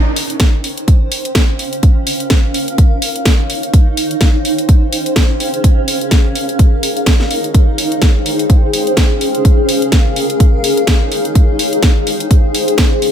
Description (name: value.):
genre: piano house.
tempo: 126 BPM.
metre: 4/4.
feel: swing 57% on 16ths.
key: unclear.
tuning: A4 = 440 Hz.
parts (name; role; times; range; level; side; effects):
granular cloud pad; texture; 0.1-13.1 s; Db4 to F5; -17 LUFS; left 1 dB; built-in reverb, sidechain pumping.
house drum kit; drums; 0.2-13.1 s; hi-hat, snare drum; -17 LUFS; equal; small room ambience.
electronic kick drum; drums; 0.4-12.9 s; none; -10 LUFS; equal; small room ambience.
room: little or no reverb.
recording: none.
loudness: -10 LUFS.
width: side -9 dB against mid.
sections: 0.0-13.1 A section.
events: none.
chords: 0.0 C5; 0.6 Dbmaj7; 1.6 Bbm; 2.5 Ebsus2; 3.7 Eb6; 4.4 Dbmaj7; 5.4 Bbm7; 6.4 Eb9sus4; 7.5 Abmaj7; 8.3 Dbmaj7; 9.2 Bbm7; 10.2 Eb9sus4; 11.4 Abmaj7; 12.1 Dbmaj7.